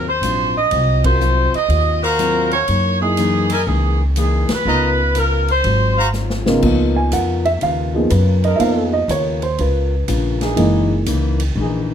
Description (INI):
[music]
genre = jazz, big band swing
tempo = 122 BPM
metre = 4/4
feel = swing 67% on 8ths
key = Db mixolydian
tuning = A4 = 438 Hz
[part]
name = warm saxophone section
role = melody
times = 0.0-6.1 s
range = Ab4 to Eb5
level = -18 LUFS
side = right 1 dB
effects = none
[part]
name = picked plugged-in steel-string acoustic guitar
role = accompaniment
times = 0.0-11.9 s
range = Gb2 to Bb4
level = -25 LUFS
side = left 7 dB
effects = none
[part]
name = upright bass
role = bass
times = 0.0-11.9 s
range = Gb1 to Gb2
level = -18 LUFS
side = equal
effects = none
[part]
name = swinging big-band drum kit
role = drums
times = 0.2-11.5 s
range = crash cymbal, hi-hat, kick drum, ride cymbal, snare drum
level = -28 LUFS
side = equal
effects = none
[part]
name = warm baby grand piano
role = accompaniment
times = 1.0-11.4 s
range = Db3 to Ab5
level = -18 LUFS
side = right 2 dB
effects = none
[part]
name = bright trumpet section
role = stabs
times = 2.0-6.1 s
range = Fb4 to Bb5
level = -21 LUFS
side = equal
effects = none
[part]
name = warm trombone section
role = sustained chords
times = 8.4-11.8 s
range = Fb3 to Bb4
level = -24 LUFS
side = right 2 dB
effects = none
[sound]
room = light reverb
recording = close, detailed microphones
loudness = -14 LUFS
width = side -8 dB against mid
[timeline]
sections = 0.0-6.6 A section; 6.6-11.9 B section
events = band accent 1.0, 4.4; drum fill 6.1-6.6; grand piano solo 6.6-11.9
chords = 0.0 Ab13; 2.7 Gb13; 4.7 Db13; 5.6 Ab13; 6.6 Db13; 10.6 Gb13